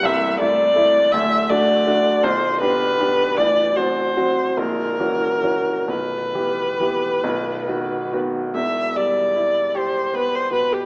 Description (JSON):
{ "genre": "classical, romantic duo for viola and grand piano", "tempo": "43-56 BPM (dotted quarters)", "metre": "6/8", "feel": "rubato", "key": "E minor", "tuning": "A4 = 441 Hz", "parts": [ { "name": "warm viola", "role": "melody", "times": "0.0-10.9 s", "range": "G4 to E5", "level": "-18 LUFS", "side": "equal", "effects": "none" }, { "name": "clear baby grand piano", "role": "accompaniment", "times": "0.0-10.9 s", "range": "A0 to G4", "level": "-22 LUFS", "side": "equal", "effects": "none" } ], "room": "moderate concert hall reverb, RT60 2.3 s", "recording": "small speaker sound", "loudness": "-17 LUFS", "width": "side -27 dB against mid", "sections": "0.0-8.6 A section; 8.6-10.9 A section", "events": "none", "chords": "0.0 Am/C; 1.1 D; 2.2 G/B; 3.4 F#dim/A; 4.6 F#7/A#; 5.9 Em/B; 7.2 B; 8.6 Em", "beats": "0.05 | 1.13 2.23 | 3.37 4.58 | 5.88 7.24 | 8.56 9.76" }